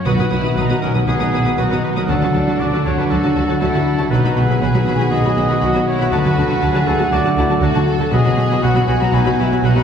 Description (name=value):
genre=cinematic, heroic adventure film score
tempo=119 BPM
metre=4/4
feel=straight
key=unclear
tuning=A4 = 439 Hz
part: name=clear oboe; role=second line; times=0.0-9.8 s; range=F#4 to A#5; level=-24 LUFS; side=right 2 dB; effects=none
part: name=rich symphonic viola section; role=accompaniment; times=0.0-9.8 s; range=F#3 to B4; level=-24 LUFS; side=right 2 dB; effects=none
part: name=concert harp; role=arpeggios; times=0.0-9.8 s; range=B2 to F#4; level=-24 LUFS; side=left 6 dB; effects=none
part: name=warm studio violin section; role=melody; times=0.1-9.8 s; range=A5 to D#6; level=-29 LUFS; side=left 5 dB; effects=none
part: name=clear symphonic violin section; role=second line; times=0.1-9.8 s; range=C#4 to A4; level=-25 LUFS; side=left 2 dB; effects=none
part: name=warm French horn section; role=sustained chords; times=0.1-9.8 s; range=A3 to F#4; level=-23 LUFS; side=left 4 dB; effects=none
part: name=warm trombone section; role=sustained chords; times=0.1-9.8 s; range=B2 to F#3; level=-25 LUFS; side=right 2 dB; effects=none
part: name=mellow trumpet section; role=stabs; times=0.1-9.8 s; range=F#5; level=-25 LUFS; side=right 2 dB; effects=none
part: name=rich symphonic cello section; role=bass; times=0.1-9.8 s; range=B2 to D3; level=-22 LUFS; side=right 2 dB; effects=none
part: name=warm symphonic double bass section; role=bass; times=0.1-9.7 s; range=B1 to D2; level=-21 LUFS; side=right 1 dB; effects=none
part: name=timpani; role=percussion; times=0.1-0.8 s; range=B2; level=-26 LUFS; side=equal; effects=none
room=wet concert hall reverb, RT60 2.3 s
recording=heard from further back in the room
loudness=-14 LUFS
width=side -7 dB against mid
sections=0.1-9.8 A section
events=none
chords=0.1 B; 2.1 D; 4.1 B; 6.1 D; 8.1 B